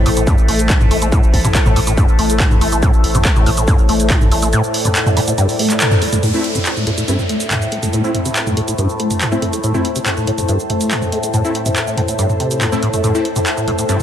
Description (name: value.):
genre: driving peak-time techno.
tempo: 141 BPM.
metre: 4/4.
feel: straight.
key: A minor.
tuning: A4 = 440 Hz.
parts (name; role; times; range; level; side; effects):
acid bass, saw; riff; 0.0-14.0 s; G2 to A3; -19 LUFS; equal; analog chorus, sidechain pumping, dub echo.
saturated sub bass; bass; 0.0-4.5 s; A1; -18 LUFS; equal; overdrive, sidechain pumping, low-pass filter.
overtone-sweeping drone; drone; 0.0-14.0 s; A2 to A3; -23 LUFS; equal; chorus, built-in reverb, phaser, sidechain pumping.
ethereal airy pad; texture; 0.0-14.0 s; E4 to A5; -23 LUFS; left 1 dB; ensemble chorus, built-in reverb, sidechain pumping.
punchy analog drum machine; drums; 0.1-14.0 s; handclaps, hi-hat, shaker, toms; -19 LUFS; equal; sidechain pumping on hats, sidechain pumping on perc, sidechain pumping on toms.
electronic kick drum; drums; 0.3-4.2 s; none; -14 LUFS; equal; distortion, overdrive.
downlifter; sound effects; 6.2-9.6 s; none; -27 LUFS; equal; none.
rave stab; stabs; 6.3-14.0 s; A3 to E4; -23 LUFS; left 2 dB; chorus, built-in reverb, sidechain pumping, dub echo.
room: light reverb, digital ambience.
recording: none.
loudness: -13 LUFS.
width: side -10 dB against mid.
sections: 0.0-6.2 A section; 6.2-14.0 B section.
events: band accent 5.8; filter sweep on acid bass 6.2-14.0.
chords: 0.0 Am.